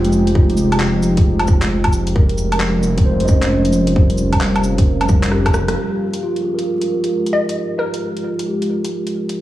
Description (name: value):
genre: future garage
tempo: 133 BPM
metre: 4/4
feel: swing 64% on 16ths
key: F minor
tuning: A4 = 440 Hz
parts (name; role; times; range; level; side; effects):
- tine electric piano; accompaniment; 0.0-9.4 s; Eb4 to Eb5; -22 LUFS; right 1 dB; medium stereo tremolo, vintage 12-bit sampler grit, sidechain pumping, tape echo
- deep dark ambient pad; sustained chords; 0.0-9.4 s; G3 to F5; -21 LUFS; equal; chorus, built-in reverb, sidechain pumping
- swelling detuned saw bass; bass; 0.0-5.7 s; F1; -18 LUFS; equal; sidechain pumping
- garage drum kit; drums; 0.0-9.4 s; cabasa, handclaps, hi-hat, rim click, woodblock; -23 LUFS; equal; studio reverb
- electronic kick drum; drums; 0.4-5.5 s; none; -14 LUFS; equal; studio reverb
- glassy wavetable pluck; melody; 7.3-8.2 s; Bb4 to Eb5; -22 LUFS; left 2 dB; chorus, analog delay
room: moderate lush hall reverb, RT60 1.7 s, digital ambience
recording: vinyl crackle, small room reverb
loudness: -14 LUFS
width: side -14 dB against mid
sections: 0.0-5.8 A section; 5.8-9.4 B section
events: drum fill 5.3-5.8; band accent 5.7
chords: 0.0 Abmaj7/F; 2.2 Gm7b5/F; 5.8 Fm7